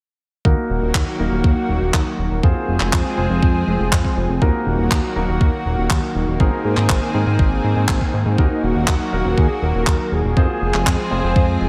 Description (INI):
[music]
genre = italo disco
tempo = 121 BPM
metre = 4/4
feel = straight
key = Eb dorian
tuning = A4 = 441 Hz
[part]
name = clear grand piano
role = stabs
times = 0.4-11.4 s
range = Bb3 to C5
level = -29 LUFS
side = equal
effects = low-pass filter, diffuse ambient delay
[part]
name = lush unison pad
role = sustained chords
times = 0.5-11.7 s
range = Eb3 to Ab4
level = -25 LUFS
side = equal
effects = chorus
[part]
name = fat analog bass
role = bass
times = 0.5-11.7 s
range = Eb1 to Ab2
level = -23 LUFS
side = equal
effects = none
[part]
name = electronic kick drum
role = drums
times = 0.5-11.5 s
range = none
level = -20 LUFS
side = equal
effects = none
[part]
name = handclaps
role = drums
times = 0.9-11.0 s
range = none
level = -27 LUFS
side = equal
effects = none
[part]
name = unison lead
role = melody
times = 8.4-11.6 s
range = Eb4 to Bb4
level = -28 LUFS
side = equal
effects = lush chorus, diffuse ambient delay
[sound]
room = moderate plate reverb, RT60 1.8 s, small room ambience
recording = dreamy mix soaked in reverb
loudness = -18 LUFS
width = mono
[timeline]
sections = 0.5-11.7 A section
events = filter sweep on grand piano 0.5-11.7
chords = 0.5 Ebm; 2.4 Fm; 4.4 Ebm; 6.4 Abadd9; 8.4 Ebm; 10.4 Fm